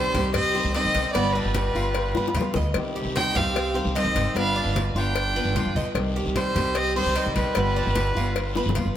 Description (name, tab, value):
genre	latin, Cuban son and guajira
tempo	150 BPM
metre	4/4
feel	straight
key	C harmonic minor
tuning	A4 = 435 Hz
part	clear fiddle	melody	0.0-8.7 s	B4 to G5	-27 LUFS	equal	none
part	brilliant trumpet	second line	0.0-8.7 s	G3 to Eb4	-34 LUFS	right 4 dB	none
part	nylon-string guitar	accompaniment	0.0-9.0 s	C3 to G4	-30 LUFS	left 2 dB	none
part	Cuban tres	arpeggios	0.0-9.0 s	B3 to Eb5	-30 LUFS	right 1 dB	none
part	upright bass	bass	0.0-9.0 s	G1 to G2	-27 LUFS	right 1 dB	none
part	congas	percussion	0.1-9.0 s	none	-31 LUFS	left 1 dB	none
part	cowbell and bongos	percussion	0.1-9.0 s	none	-32 LUFS	left 6 dB	none
part	guiro	percussion	0.2-9.0 s	none	-39 LUFS	left 3 dB	none
room	moderate plate reverb, RT60 3.1 s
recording	heard from further back in the room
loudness	-21 LUFS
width	side -11 dB against mid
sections	0.0-9.0 A section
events	drum fill 2.2-2.8, 8.6-9.0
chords	0.0 Cm; 1.2 G7; 2.8 Cm; 4.4 G7; 6.0 Cm; 7.6 G7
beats	0.35 0.75 | 1.15 1.55 1.96 2.36 | 2.76 3.16 3.56 3.96 | 4.36 4.76 5.16 5.56 | 5.96 6.36 6.76 7.16 | 7.56 7.96 8.36 8.76